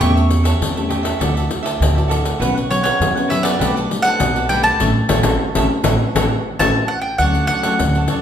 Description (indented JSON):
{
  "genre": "samba and choro",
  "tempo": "100 BPM",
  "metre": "4/4",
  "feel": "straight",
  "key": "D major",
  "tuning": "A4 = 440 Hz",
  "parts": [
    { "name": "mandolin", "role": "melody", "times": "0.0-8.2 s", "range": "C#5 to C#6", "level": "-19 LUFS", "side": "equal", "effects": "none" },
    { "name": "cavaquinho", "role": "accompaniment", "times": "0.0-8.2 s", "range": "F#4 to F#5", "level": "-24 LUFS", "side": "right 5 dB", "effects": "none" },
    { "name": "nylon-string guitar", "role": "accompaniment", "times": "0.0-8.2 s", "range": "F#2 to G4", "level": "-23 LUFS", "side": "left 3 dB", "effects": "none" },
    { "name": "upright bass", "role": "bass", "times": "0.0-8.1 s", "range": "A1 to F#2", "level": "-20 LUFS", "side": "right 1 dB", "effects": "none" },
    { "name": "pandeiro", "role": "percussion", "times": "0.0-8.2 s", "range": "none", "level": "-21 LUFS", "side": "left 3 dB", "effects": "none" }
  ],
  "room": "wet recital hall reverb, RT60 1.4 s",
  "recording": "recorded in a church or concert hall",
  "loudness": "-15 LUFS",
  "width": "side -9 dB against mid",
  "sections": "0.0-7.2 A section; 7.2-8.2 B section",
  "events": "band accent 4.8-7.2",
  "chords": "0.0 A7/E; 1.2 Dadd9; 2.4 Bsus2; 3.6 Gadd9/B; 4.8 A; 7.2 Dmaj7"
}